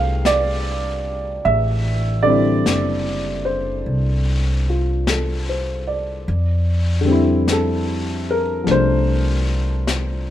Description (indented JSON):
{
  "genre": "jazz ballad",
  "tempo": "50 BPM",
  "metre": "4/4",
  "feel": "swing 66% on 8ths",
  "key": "F major",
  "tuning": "A4 = 440 Hz",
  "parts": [
    { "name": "warm upright piano", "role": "accompaniment", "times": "0.0-10.3 s", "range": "D3 to G5", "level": "-20 LUFS", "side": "equal", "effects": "none" },
    { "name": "upright bass", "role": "bass", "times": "0.0-10.3 s", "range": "Gb1 to F2", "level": "-20 LUFS", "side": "equal", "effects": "none" },
    { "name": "vintage brush drum kit", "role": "drums", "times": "0.2-10.3 s", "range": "brushed snare drum, hi-hat, snare drum", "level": "-28 LUFS", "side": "left 4 dB", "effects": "none" }
  ],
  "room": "little or no reverb",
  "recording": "close, detailed microphones",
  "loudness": "-17 LUFS",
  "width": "side -12 dB against mid",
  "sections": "0.0-6.3 A section; 6.3-10.3 B section",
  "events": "none",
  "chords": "0.0 Fmaj7"
}